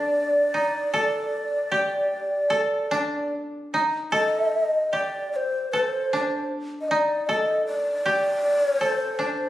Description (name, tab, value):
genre	japanese traditional, Japanese chamber music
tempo	77 BPM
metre	4/4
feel	rubato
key	D in sen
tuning	A4 = 440 Hz
part	breathy mellow long shakuhachi	melody	0.0-9.5 s	C5 to Eb5	-23 LUFS	equal	none
part	koto	second line	0.0-9.5 s	D4 to A4	-26 LUFS	equal	none
room	moderate recital hall reverb, RT60 1.5 s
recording	recorded on a phone in the room, studio reverb, compression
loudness	-22 LUFS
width	side -14 dB against mid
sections	0.0-4.1 A section; 4.1-9.5 B section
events	none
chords	none